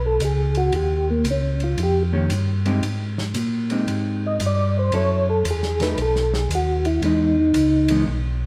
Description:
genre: soul jazz organ trio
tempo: 115 BPM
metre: 4/4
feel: swing 67% on 8ths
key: E major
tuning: A4 = 439 Hz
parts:
  - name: percussive tonewheel organ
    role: melody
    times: 0.0-8.0 s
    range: A#3 to D#5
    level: -23 LUFS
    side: equal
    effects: slow rotary speaker, chorus vibrato
  - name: mellow tonewheel organ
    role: bass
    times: 0.0-8.5 s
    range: B1 to A#2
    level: -25 LUFS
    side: equal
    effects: slow rotary speaker
  - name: warm soul drum kit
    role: drums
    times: 0.2-8.0 s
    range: hi-hat, ride cymbal, snare drum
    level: -35 LUFS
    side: equal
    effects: none
  - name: hollow-body jazz guitar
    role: accompaniment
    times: 2.1-8.1 s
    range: D#3 to A4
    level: -28 LUFS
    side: equal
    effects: none
room: moderate stone room reverb, RT60 1.2 s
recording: band playing live in one room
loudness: -21 LUFS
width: mono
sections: 0.0-8.5 A section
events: tonewheel organ solo 0.0-8.5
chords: 0.0 E (rootless); 0.7 D#7; 2.8 G#maj7; 4.9 F#m7; 6.0 B; 7.0 Emaj7

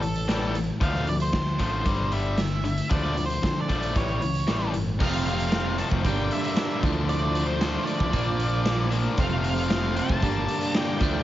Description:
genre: indie rock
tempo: 115 BPM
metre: 4/4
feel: straight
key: D minor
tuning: A4 = 440 Hz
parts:
  - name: octave-fuzz lead guitar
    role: melody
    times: 0.0-11.2 s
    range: A4 to A5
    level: -31 LUFS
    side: right 1 dB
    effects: distortion, slapback echo
  - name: overdriven electric guitar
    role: riff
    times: 0.0-11.2 s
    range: F2 to D4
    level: -28 LUFS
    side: left 4 dB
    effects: none
  - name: growling picked electric bass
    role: bass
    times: 0.0-11.2 s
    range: F1 to D3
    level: -29 LUFS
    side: equal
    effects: overdrive
  - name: raw garage drum kit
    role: drums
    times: 0.0-11.1 s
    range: crash cymbal, hi-hat, kick drum, snare drum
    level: -28 LUFS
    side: right 1 dB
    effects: none
  - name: clean electric guitar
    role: riff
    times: 5.0-11.2 s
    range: F2 to E4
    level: -30 LUFS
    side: right 6 dB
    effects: ensemble chorus, slapback echo
room: small room reverb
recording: nothing above 7.5 kHz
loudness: -22 LUFS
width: side -13 dB against mid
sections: 0.0-5.0 A section; 5.0-11.2 B section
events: none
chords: 0.0 A5; 0.8 Dm; 1.9 G5; 2.9 Dm; 4.0 A7; 5.0 F; 6.1 Gm; 6.8 Dmadd9; 8.1 Bb; 9.2 F; 10.2 Gm

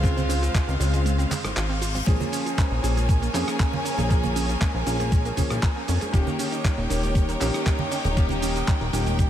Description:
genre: nu-disco, nu disco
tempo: 118 BPM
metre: 4/4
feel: straight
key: Bb dorian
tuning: A4 = 440 Hz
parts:
  - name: bright electric grand piano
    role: accompaniment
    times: 0.0-9.3 s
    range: Db3 to Ab4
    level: -30 LUFS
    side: left 2 dB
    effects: wide subtle chorus, sidechain pumping, ping-pong delay
  - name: clear studio violin section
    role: sustained chords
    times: 0.0-9.3 s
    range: Db4 to Ab5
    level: -30 LUFS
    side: equal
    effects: sidechain pumping
  - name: analog pluck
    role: arpeggios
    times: 0.0-9.3 s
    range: G3 to Ab4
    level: -33 LUFS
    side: right 5 dB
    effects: chorus, sidechain pumping, analog delay
  - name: chorused synth bass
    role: bass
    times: 0.0-9.3 s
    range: Eb1 to F2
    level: -25 LUFS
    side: equal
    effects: none
  - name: dusty soul sampler-style drum kit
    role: drums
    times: 0.0-9.3 s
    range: handclaps, hi-hat, rim click, shaker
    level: -32 LUFS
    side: right 1 dB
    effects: none
  - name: electronic kick drum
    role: drums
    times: 0.0-9.3 s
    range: none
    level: -22 LUFS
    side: equal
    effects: none
  - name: congas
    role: percussion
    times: 0.2-9.2 s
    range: none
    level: -34 LUFS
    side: right 4 dB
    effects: none
  - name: reverse cymbal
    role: sound effects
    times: 1.3-2.1 s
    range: none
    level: -36 LUFS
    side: left 3 dB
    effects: none
room: light reverb, digital ambience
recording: none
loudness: -21 LUFS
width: side -11 dB against mid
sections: 0.0-9.3 A section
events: break 1.1-2.1; reverse cymbal 1.3-2.1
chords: 0.0 Dbmaj7; 2.1 Bbm7; 6.1 Eb7

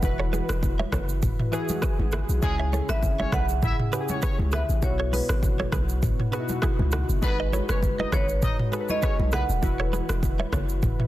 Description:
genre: afrobeats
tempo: 100 BPM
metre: 4/4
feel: swing 55% on 16ths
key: C# minor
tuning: A4 = 440 Hz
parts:
  - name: marimba with medium mallets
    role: melody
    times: 0.0-10.2 s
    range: B4 to G#5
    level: -32 LUFS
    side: right 2 dB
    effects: digital delay
  - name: warm analog keys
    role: accompaniment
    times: 0.0-11.1 s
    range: B2 to B4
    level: -32 LUFS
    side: left 2 dB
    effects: chorus
  - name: warm 808-style bass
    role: bass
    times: 0.0-10.9 s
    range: D#1 to C#2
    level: -26 LUFS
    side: equal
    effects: none
  - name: afro-pop drum kit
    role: drums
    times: 0.0-11.1 s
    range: hi-hat, kick drum, rim click, shaker, toms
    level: -27 LUFS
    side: equal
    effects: none
  - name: direct-recorded clean electric guitar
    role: riff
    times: 0.2-10.6 s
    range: D#4 to E5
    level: -34 LUFS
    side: right 4 dB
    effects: digital delay
  - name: congas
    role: percussion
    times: 0.3-10.7 s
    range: none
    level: -34 LUFS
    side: right 1 dB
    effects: none
  - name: clear horn section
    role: second line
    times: 2.4-9.4 s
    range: G#3 to E5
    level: -35 LUFS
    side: left 3 dB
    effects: none
room: digital ambience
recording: dense, heavily limited modern master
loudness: -22 LUFS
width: side -15 dB against mid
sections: 0.0-11.1 A section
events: synth keys fill 10.8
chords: 0.0 Esus2; 2.4 C#m; 4.8 Bsus4; 7.2 G#m7; 9.6 Esus2

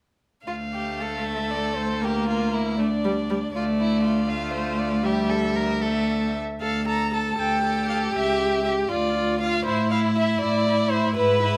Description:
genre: quick classical-period movement for string quartet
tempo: 79 BPM (dotted quarters)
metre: 6/8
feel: rubato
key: D minor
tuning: A4 = 440 Hz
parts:
  - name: warm violin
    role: melody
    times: 0.5-11.6 s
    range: Bb4 to Bb5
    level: -30 LUFS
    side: equal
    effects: none
  - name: clear violin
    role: second line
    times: 0.5-11.6 s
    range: D4 to B4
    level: -31 LUFS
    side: equal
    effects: none
  - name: clear viola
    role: accompaniment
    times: 0.5-11.6 s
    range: G3 to A4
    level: -30 LUFS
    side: equal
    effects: none
  - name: rich cello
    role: bass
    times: 0.5-11.6 s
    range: C#2 to A2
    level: -28 LUFS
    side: equal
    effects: none
room: moderate recital hall reverb, RT60 1.4 s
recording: none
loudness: -24 LUFS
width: mono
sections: 0.5-6.6 A section; 6.6-11.6 B section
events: none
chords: 0.5 Dm; 2.0 E7(b5, no3)/D (rootless); 3.5 Dm; 5.0 A5/D; 6.6 D5; 8.1 C#dim; 8.9 Dm; 9.7 A5

